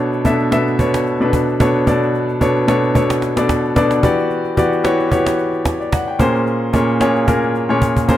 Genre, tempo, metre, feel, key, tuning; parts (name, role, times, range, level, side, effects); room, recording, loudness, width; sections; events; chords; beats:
amapiano; 111 BPM; 4/4; swing 55% on 16ths; B minor; A4 = 440 Hz
warm grand piano; accompaniment; 0.0-8.2 s; A#2 to G5; -14 LUFS; left 1 dB
cajon; drums; 0.1-8.2 s; -20 LUFS; right 1 dB
light reverb, studio reverb; -14 LUFS; side -12 dB against mid
0.0-8.2 A section
drum fill 7.3-8.2
0.0 Bm9; 4.0 Em9; 6.2 A#m9
0.25 0.79 1.33 | 1.87 2.41 2.95 3.49 | 4.03 4.57 5.11 5.66 | 6.20 6.74 7.28 7.82